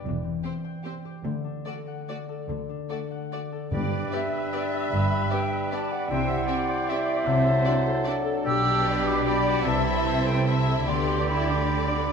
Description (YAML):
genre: classical, orchestral ballroom waltz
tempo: 135-168 BPM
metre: 3/4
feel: rubato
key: G major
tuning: A4 = 441 Hz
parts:
  - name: concert harp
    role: arpeggios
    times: 0.0-12.1 s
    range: G2 to G5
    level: -31 LUFS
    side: left 7 dB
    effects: none
  - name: rich studio cello section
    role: bass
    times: 0.1-12.1 s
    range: D2 to D3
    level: -32 LUFS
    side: right 4 dB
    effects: none
  - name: warm symphonic double bass section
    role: bass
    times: 0.1-12.1 s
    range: E1 to D2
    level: -30 LUFS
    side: right 3 dB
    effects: none
  - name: warm symphonic violin section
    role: second line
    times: 0.4-12.0 s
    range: B3 to G4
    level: -33 LUFS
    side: left 4 dB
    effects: none
  - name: warm symphonic viola section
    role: accompaniment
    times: 0.4-12.1 s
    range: A3 to E5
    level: -33 LUFS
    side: right 1 dB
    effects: none
  - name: warm studio violin section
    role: melody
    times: 0.5-12.1 s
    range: C5 to E5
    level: -37 LUFS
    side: left 3 dB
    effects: none
  - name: dark clarinet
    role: second line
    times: 3.7-12.1 s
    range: D4 to E4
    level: -34 LUFS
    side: equal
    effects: none
  - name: warm oboe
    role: second line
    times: 3.7-12.1 s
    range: G4 to C5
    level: -35 LUFS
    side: right 3 dB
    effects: none
  - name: mellow bassoon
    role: accompaniment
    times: 3.7-12.1 s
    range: E3 to G3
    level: -32 LUFS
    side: right 3 dB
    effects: none
  - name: timpani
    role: percussion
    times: 3.7-4.3 s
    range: G2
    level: -33 LUFS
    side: left 1 dB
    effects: none
  - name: silver concert flute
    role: second line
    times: 4.1-12.1 s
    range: D5 to E6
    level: -29 LUFS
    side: equal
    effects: none
room: wet recital hall reverb, RT60 1.8 s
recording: minimal, uncompressed stereo recording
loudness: -23 LUFS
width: side -6 dB against mid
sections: 0.0-3.7 A section; 3.7-12.1 B section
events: none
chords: 0.1 C/E; 1.2 D; 3.7 G; 6.1 C; 7.3 D7/C; 8.5 G/B; 9.7 Am/C; 10.9 G/D